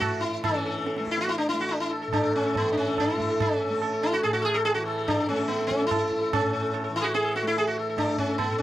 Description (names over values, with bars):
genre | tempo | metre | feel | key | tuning
indian classical, Hindustani | 143 BPM | 7/4 | straight | A raga bilaval | A4 = 440 Hz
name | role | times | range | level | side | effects
sitar | melody | 0.0-8.6 s | B3 to A4 | -25 LUFS | left 1 dB | none
tanpura | drone | 0.0-8.6 s | A2 to A3 | -33 LUFS | equal | none
tabla | percussion | 0.0-8.5 s | none | -32 LUFS | right 4 dB | none
room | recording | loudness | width
light reverb | dry, close 1970s-style studio recording | -23 LUFS | side -14 dB against mid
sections
0.4-8.6 A section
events
none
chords
none